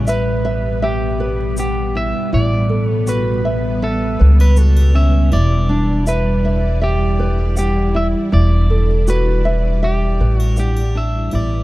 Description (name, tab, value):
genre	trip hop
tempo	80 BPM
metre	4/4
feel	swing 54% on 16ths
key	E dorian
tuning	A4 = 440 Hz
part	electric guitar at the edge of break-up	melody	0.0-11.6 s	G4 to E5	-23 LUFS	equal	none
part	string machine, cellos	sustained chords	0.0-11.6 s	G3 to D5	-23 LUFS	equal	ensemble chorus
part	nylon-string guitar	arpeggios	0.0-11.6 s	C#4 to F#5	-24 LUFS	right 1 dB	tape echo
part	upright bass	bass	0.0-11.6 s	E1 to C#2	-15 LUFS	equal	none
part	egg shaker and triangle	percussion	0.1-11.5 s	none	-35 LUFS	equal	none
room	studio ambience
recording	dark, warm production, vinyl crackle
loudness	-14 LUFS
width	side -17 dB against mid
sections	0.0-11.6 A section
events	fade-out 9.3-11.6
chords	0.0 A9; 5.3 Em7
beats	0.07 0.82 1.57 | 2.32 3.07 3.82 4.57 | 5.32 6.07 6.82 7.57 | 8.32 9.07 9.82 10.57 | 11.32